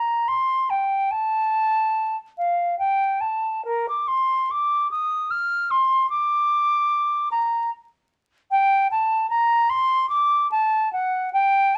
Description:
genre	classical, baroque-style fantasia for unaccompanied flute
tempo	73 BPM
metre	3/4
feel	uneven beats, rubato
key	G minor from 8.5 s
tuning	A4 = 440 Hz
part	concert flute	solo	0.0-11.8 s	Bb4 to F6	-22 LUFS	equal	none
room	moderate small room reverb, RT60 0.5 s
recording	vinyl crackle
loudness	-22 LUFS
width	mono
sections	0.0-11.8 A section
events	none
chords	none

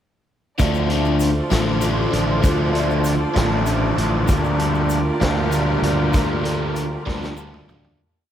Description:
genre	psychedelic rock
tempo	65 BPM (dotted quarters)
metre	6/8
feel	straight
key	D minor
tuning	A4 = 440 Hz
part	muted studio string section	sustained chords	0.6-8.0 s	F4 to D5	-26 LUFS	right 2 dB	none
part	crunchy overdriven guitar	riff	0.6-8.0 s	D3 to D4	-22 LUFS	left 1 dB	phaser
part	fuzz picked electric bass	bass	0.6-8.0 s	A1 to D2	-22 LUFS	equal	overdrive
part	vintage drum kit	drums	0.6-8.0 s	hi-hat, kick drum, snare drum, toms	-24 LUFS	equal	none
part	egg shaker	percussion	0.6-7.8 s	none	-40 LUFS	left 11 dB	none
room	moderate huge ambient reverb, RT60 7.8 s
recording	dreamy mix soaked in reverb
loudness	-17 LUFS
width	side -10 dB against mid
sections	0.6-8.0 groove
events	fade-out 6.1-8.0; drum fill 7.1-8.0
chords	0.6 Dm7; 4.3 Gm7/D

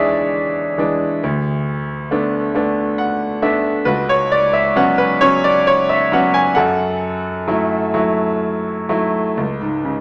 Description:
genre	classical, lyrical solo piano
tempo	42-46 BPM (dotted quarters)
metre	6/8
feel	rubato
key	F# minor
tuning	A4 = 436 Hz
part	bright concert grand piano	solo	0.0-10.0 s	C#2 to G#5	-17 LUFS	equal	none
room	moderate recital hall reverb, RT60 1.5 s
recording	none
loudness	-17 LUFS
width	mono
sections	0.0-9.4 A section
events	grand piano fill 2.5-3.9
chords	0.0 E7; 1.2 Bm7/D; 3.9 C#7sus4; 6.6 F#m7; 9.4 C#5

